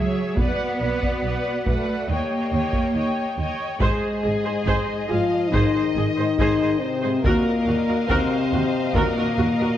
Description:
cinematic, epic orchestral film score; 70 BPM; 4/4; straight; A4 = 440 Hz
rich symphonic violin section; melody; 0.0-9.8 s; Ab4 to G5; -32 LUFS; left 3 dB
dark symphonic violin section; second line; 0.0-9.8 s; C#5 to F5; -32 LUFS; left 4 dB
rich symphonic viola section; accompaniment; 0.0-9.7 s; Gb4 to C#5; -28 LUFS; right 2 dB
mellow French horn section; sustained chords; 0.0-9.8 s; Ab3 to E5; -24 LUFS; left 3 dB
clear symphonic cello section; bass; 0.0-9.7 s; Eb2 to B3; -28 LUFS; right 2 dB
warm symphonic double bass section; bass; 0.0-9.5 s; Ab1 to D#2; -29 LUFS; right 3 dB
solo taiko drums; drums; 0.4-9.8 s; -26 LUFS; equal
clear trombone section; sustained chords; 3.8-9.8 s; Ab2 to F3; -30 LUFS; right 3 dB
moderate scoring stage reverb, RT60 1.6 s; worn, warbling old tape, cassette tape, warbly pitch drift; -20 LUFS; side -11 dB against mid
0.0-3.8 A section; 3.8-9.8 B section
0.4 Bm; 2.1 D#7; 3.8 Ab; 7.2 Ebmadd9
| 0.39 1.24 2.10 2.96 | 3.81 4.67 5.53 6.39 | 7.24 8.10 8.96

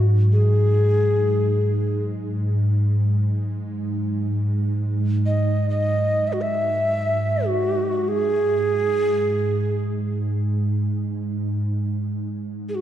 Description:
world meditative, free-time meditation music; free time; A4 = 440 Hz
breathy mellow Native American-style cedar flute; melody; 0.0-12.8 s; F#4 to E5; -22 LUFS; right 1 dB
ethereal airy pad; drone; 0.0-12.8 s; G#2; -21 LUFS; equal; ensemble chorus, built-in reverb
bronze singing bowl; texture; 0.0-3.5 s; F#3; -41 LUFS; right 1 dB
wet church reverb, RT60 3.6 s; dark, warm production; -19 LUFS; side -11 dB against mid
0.0-12.8 A section
free time

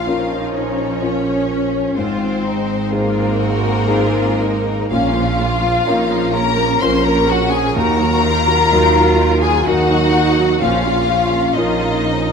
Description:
cinematic, emotional film score for orchestra; 63 BPM; 3/4; rubato; Bb minor; A4 = 440 Hz
rich studio violin section; melody; 0.0-12.3 s; Bb4 to C6; -20 LUFS; left 5 dB
warm studio violin section; second line; 0.0-12.3 s; Bb3 to C5; -21 LUFS; left 2 dB
warm concert grand piano; accompaniment; 0.0-12.3 s; Eb2 to C5; -19 LUFS; left 1 dB
warm studio viola section; accompaniment; 0.0-12.3 s; Eb3 to Gb4; -24 LUFS; right 3 dB
clear studio double bass section; bass; 0.0-12.3 s; Ab1 to Eb2; -22 LUFS; right 4 dB
rich studio cello section; bass; 0.0-12.3 s; Db4 to Gb4; -24 LUFS; right 5 dB
wet concert hall reverb, RT60 1.8 s; -14 LUFS; side -6 dB against mid
0.0-12.3 A section
0.0 Bbm; 2.0 Ab; 4.9 Bbm; 7.8 Ebm; 10.6 Bbm
0.07 1.03 | 1.98 2.93 3.89 | 4.91 5.87 6.81 | 7.75 8.71 9.66 | 10.61 11.57

